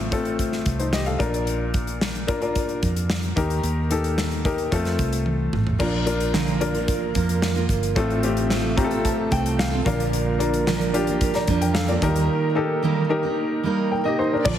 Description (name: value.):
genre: piano-driven pop.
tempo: 111 BPM.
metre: 4/4.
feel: straight.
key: Bb major.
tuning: A4 = 440 Hz.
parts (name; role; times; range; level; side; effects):
clear upright piano; accompaniment; 0.0-14.6 s; A2 to Bb5; -24 LUFS; left 3 dB; none.
vintage muted fingered electric bass; bass; 0.0-14.6 s; G1 to F2; -26 LUFS; equal; none.
modern studio drum kit; drums; 0.1-14.6 s; crash cymbal, hi-hat, kick drum, snare drum, toms; -26 LUFS; equal; none.
fingerpicked steel-string acoustic guitar; riff; 5.8-14.6 s; Bb2 to Bb4; -24 LUFS; right 6 dB; none.
warm studio violin section; second line; 14.5-14.6 s; D4 to D5; -30 LUFS; right 4 dB; none.
room: moderate concert hall reverb, RT60 2.1 s.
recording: heavily compressed radio sound.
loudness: -20 LUFS.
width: side -10 dB against mid.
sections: 0.0-5.8 A section; 5.8-14.5 B section.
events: drum fill 5.3-5.8; upright piano fill 8.5-10.1.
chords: 0.0 F/A; 1.2 Bb; 3.4 Eb; 4.7 F; 5.8 Bb; 8.0 F/A; 9.9 Bb; 12.0 Eb.